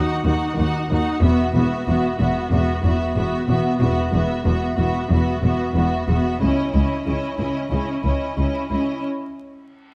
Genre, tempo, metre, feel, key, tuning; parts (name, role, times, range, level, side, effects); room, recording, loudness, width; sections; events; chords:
cinematic; 92 BPM; 4/4; straight; A4 = 440 Hz
rich studio violin section; melody; 0.0-9.0 s; Eb5 to Gb5; -33 LUFS; equal
dark symphonic violin section; second line; 0.0-9.0 s; Fb4 to Gb4; -30 LUFS; equal
warm symphonic viola section; accompaniment; 0.0-9.0 s; B3 to Eb4; -28 LUFS; equal
rich symphonic cello section; riff; 0.0-8.9 s; E2 to Eb3; -27 LUFS; equal
warm symphonic violin section; texture; 0.0-0.9 s; Db6 to D6; -45 LUFS; equal
rich symphonic double bass section; bass; 0.2-8.8 s; E1 to Eb2; -27 LUFS; equal
warm symphonic cello section; bass; 0.2-8.8 s; Db2 to E2; -27 LUFS; equal
reverse cymbal; sound effects; 9.4-9.9 s; -57 LUFS; equal
moderate scoring stage reverb, RT60 1.7 s; close, detailed microphones, vinyl crackle; -21 LUFS; mono
0.0-9.9 A section
break 9.0-9.9; reverse cymbal 9.4-9.9
0.0 Ebm; 1.2 Esus2; 6.4 Dbmadd9; 9.0 N.C.